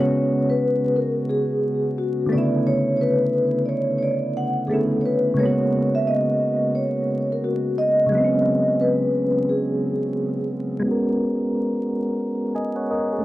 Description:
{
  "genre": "hip hop",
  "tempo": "88 BPM",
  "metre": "4/4",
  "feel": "swing 64% on 16ths",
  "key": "G# minor",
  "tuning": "A4 = 440 Hz",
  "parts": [
    { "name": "vibraphone with soft mallets", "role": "melody", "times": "0.0-10.5 s", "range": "F#4 to F#5", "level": "-22 LUFS", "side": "equal", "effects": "none" },
    { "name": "soft electric-piano-like synth keys", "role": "accompaniment", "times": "0.0-13.2 s", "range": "C#3 to G#5", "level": "-22 LUFS", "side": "equal", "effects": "chorus, tremolo, cassette tape, low-pass filter" }
  ],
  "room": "moderate spring reverb, RT60 1.6 s",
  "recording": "dark, warm production, vinyl crackle",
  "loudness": "-19 LUFS",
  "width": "side -16 dB against mid",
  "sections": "0.0-10.8 A section; 10.8-13.2 B section",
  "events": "none",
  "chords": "0.0 G#m7; 2.3 Bm11; 5.4 G#m11"
}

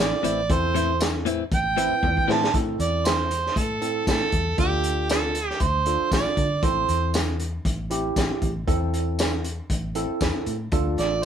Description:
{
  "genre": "straight-eighth soul blues",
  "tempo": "117 BPM",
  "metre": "4/4",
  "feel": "swing 56% on 16ths",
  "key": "A minor",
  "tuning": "A4 = 440 Hz",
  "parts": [
    { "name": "mellow harmonica", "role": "melody", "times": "0.0-7.1, 11.0-11.2 s", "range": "G4 to A5", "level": "-24 LUFS", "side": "right 5 dB", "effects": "overdrive" },
    { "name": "tine electric piano", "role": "accompaniment", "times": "0.0-11.2 s", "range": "C4 to B4", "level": "-29 LUFS", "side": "right 2 dB", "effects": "medium stereo tremolo" },
    { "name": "vintage muted fingered electric bass", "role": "bass", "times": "0.0-11.2 s", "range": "A1 to D3", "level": "-28 LUFS", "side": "left 1 dB", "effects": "none" },
    { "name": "crunchy breakbeat drum kit", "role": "drums", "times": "0.0-11.1 s", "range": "hi-hat, kick drum, snare drum, tambourine, toms", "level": "-26 LUFS", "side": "equal", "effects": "none" },
    { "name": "direct-recorded clean electric guitar", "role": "stabs", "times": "0.2-2.5 s", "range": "A2 to E4", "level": "-26 LUFS", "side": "left 7 dB", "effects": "none" }
  ],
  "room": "light reverb",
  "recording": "band playing live in one room",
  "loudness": "-21 LUFS",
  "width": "side -8 dB against mid",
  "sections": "0.0-2.5 A section; 2.5-11.2 B section",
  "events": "harmonica solo 0.0-2.5; drum fill 2.0-2.5",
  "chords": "0.0 Am; 4.6 Dm; 6.6 Am; 10.7 Dm"
}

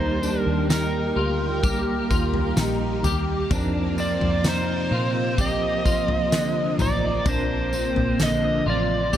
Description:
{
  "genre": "dream pop",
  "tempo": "64 BPM",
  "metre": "4/4",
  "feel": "straight",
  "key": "unclear",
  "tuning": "A4 = 440 Hz",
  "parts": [
    { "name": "overdriven slide guitar", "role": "melody", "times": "0.0-9.2 s", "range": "Bb4 to Eb5", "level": "-26 LUFS", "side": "right 1 dB", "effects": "tape echo" },
    { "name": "mellow electric guitar", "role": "accompaniment", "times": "0.0-9.2 s", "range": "Eb3 to Bb4", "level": "-30 LUFS", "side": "right 4 dB", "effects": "tremolo, analog chorus" },
    { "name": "string machine, violins", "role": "sustained chords", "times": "0.0-9.2 s", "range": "C3 to G4", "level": "-28 LUFS", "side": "equal", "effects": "ensemble chorus" },
    { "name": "electric guitar at the edge of break-up", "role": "arpeggios", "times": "0.0-9.2 s", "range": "D3 to G4", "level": "-29 LUFS", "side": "left 3 dB", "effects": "ensemble chorus, tape echo" },
    { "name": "vintage muted fingered electric bass", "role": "bass", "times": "0.0-9.2 s", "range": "A1 to Bb2", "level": "-27 LUFS", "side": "equal", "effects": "none" },
    { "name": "loose indie drum kit", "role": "drums", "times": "0.2-9.2 s", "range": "kick drum, snare drum, tambourine, toms", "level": "-26 LUFS", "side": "left 1 dB", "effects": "none" },
    { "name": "glockenspiel with hard plastic mallets", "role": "texture", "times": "1.6-9.2 s", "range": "F6 to Bb6", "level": "-40 LUFS", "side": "left 3 dB", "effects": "tape echo" }
  ],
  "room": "light reverb, small room ambience",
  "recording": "none",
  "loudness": "-20 LUFS",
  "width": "side -11 dB against mid",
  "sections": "0.0-9.2 A section",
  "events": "none",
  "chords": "0.0 Eb; 3.5 F7sus4; 7.3 Bbsus2"
}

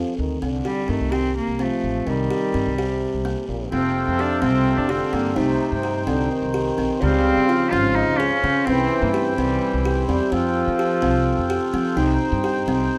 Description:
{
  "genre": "contemporary instrumental, chamber music in an uneven meter",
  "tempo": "255 BPM (eighths)",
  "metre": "7/8",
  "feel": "straight",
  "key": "C dorian",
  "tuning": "A4 = 440 Hz",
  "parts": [
    { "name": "mellow French horn", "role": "second line", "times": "0.0-12.0 s", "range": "Bb2 to G3", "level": "-28 LUFS", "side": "equal", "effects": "none" },
    { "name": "buzzing kalimba", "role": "arpeggios", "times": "0.0-13.0 s", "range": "Db3 to Ab4", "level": "-26 LUFS", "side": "equal", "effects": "none" },
    { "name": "upright bass", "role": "bass", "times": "0.0-12.9 s", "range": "F1 to F3", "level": "-28 LUFS", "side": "equal", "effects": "none" },
    { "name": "rich cello", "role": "melody", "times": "0.7-10.0 s", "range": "G3 to F4", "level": "-27 LUFS", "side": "equal", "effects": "none" },
    { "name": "hand-pumped harmonium", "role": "sustained chords", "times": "3.7-13.0 s", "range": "Db3 to G5", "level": "-28 LUFS", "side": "equal", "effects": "none" }
  ],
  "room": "light reverb",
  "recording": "close, detailed microphones",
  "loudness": "-21 LUFS",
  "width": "mono",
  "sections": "0.0-3.7 A section; 3.7-13.0 B section",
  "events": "none",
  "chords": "0.4 Cmadd9; 2.1 Cm7; 3.7 Fadd9; 5.4 Cm; 7.0 Dbmaj7; 8.7 C; 10.3 Fadd9; 12.0 Cm"
}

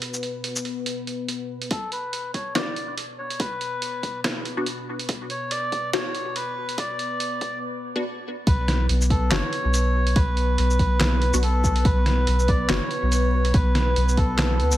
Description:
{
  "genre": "deep dubstep",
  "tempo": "142 BPM",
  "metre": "4/4",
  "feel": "swing 56% on 16ths, half-time",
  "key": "B minor",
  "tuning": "A4 = 440 Hz",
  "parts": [
    { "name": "dark analog pad", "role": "sustained chords", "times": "0.0-14.8 s", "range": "B3 to B4", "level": "-31 LUFS", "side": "left 1 dB", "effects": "chorus" },
    { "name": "trip hop sampler-style drum kit", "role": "drums", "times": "0.0-14.8 s", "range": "handclaps, hi-hat, shaker, snare drum", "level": "-27 LUFS", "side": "right 1 dB", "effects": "high-pass filter on hats, high-pass filter on perc, high-pass filter on snare, high-pass filter on room" },
    { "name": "melodica", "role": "melody", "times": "1.7-14.8 s", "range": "A4 to D5", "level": "-28 LUFS", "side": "equal", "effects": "low-pass filter, dub echo" },
    { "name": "electronic kick drum", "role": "drums", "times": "1.7-14.3 s", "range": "none", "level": "-23 LUFS", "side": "equal", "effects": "high-pass filter on kick, high-pass filter on room" },
    { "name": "filtered dub chord stab", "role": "stabs", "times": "2.6-12.8 s", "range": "B3 to F#4", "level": "-31 LUFS", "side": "left 3 dB", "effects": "phaser, analog chorus, dub echo" },
    { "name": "soft dub sub bass", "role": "bass", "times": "8.5-14.8 s", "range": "F#1 to D2", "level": "-21 LUFS", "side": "equal", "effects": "none" }
  ],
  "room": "light reverb",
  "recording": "none",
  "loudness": "-21 LUFS",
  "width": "side -14 dB against mid",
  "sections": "0.0-1.7 A section; 1.7-8.5 B section; 8.5-14.8 C section",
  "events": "filter sweep on analog synth pad 0.0-1.7, 1.7-8.5; build-up 1.7-8.5; filter sweep on melodica 1.7-8.5; break 7.6-8.5; drop 8.5-14.8",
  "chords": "0.0 N.C.; 1.7 Bm; 8.5 B5"
}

